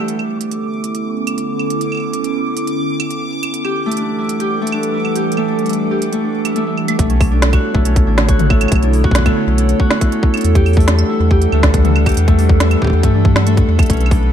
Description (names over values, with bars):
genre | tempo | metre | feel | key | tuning
IDM | 139 BPM | 4/4 | straight | B minor | A4 = 440 Hz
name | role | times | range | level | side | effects
warbly tape-like pad | sustained chords | 0.0-14.3 s | D3 to F#5 | -20 LUFS | right 1 dB | chorus, built-in reverb, phaser
Celtic harp | arpeggios | 0.0-14.3 s | A3 to G4 | -19 LUFS | left 1 dB | ping-pong delay
organic electronic drum kit | drums | 0.1-14.2 s | claves, hi-hat, snare drum, toms | -21 LUFS | right 1 dB | overdrive
bubbling stepped-filter texture | texture | 0.1-7.0, 13.9-14.3 s | B4 to D6 | -27 LUFS | right 2 dB | chorus, built-in reverb
warm sub bass | bass | 7.0-14.3 s | A1 to G2 | -14 LUFS | equal | none
electronic kick drum | drums | 7.0-14.2 s | none | -14 LUFS | equal | overdrive
room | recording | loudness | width
light reverb | dark, warm production | -13 LUFS | side -9 dB against mid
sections
0.1-7.0 A section; 7.0-14.3 B section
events
filter sweep on ambient pad 0.1-7.0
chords
0.1 Bm11; 3.5 Em11; 7.0 Bm11; 10.4 Em11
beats
| 0.08 0.52 0.95 1.38 | 1.81 2.24 2.67 3.10 | 3.54 3.97 4.40 4.83 | 5.26 5.70 6.13 6.56 | 6.99 7.42 7.85 8.29 | 8.72 9.15 9.58 10.01 | 10.44 10.88 11.31 11.74 | 12.17 12.60 13.03 13.46 | 13.90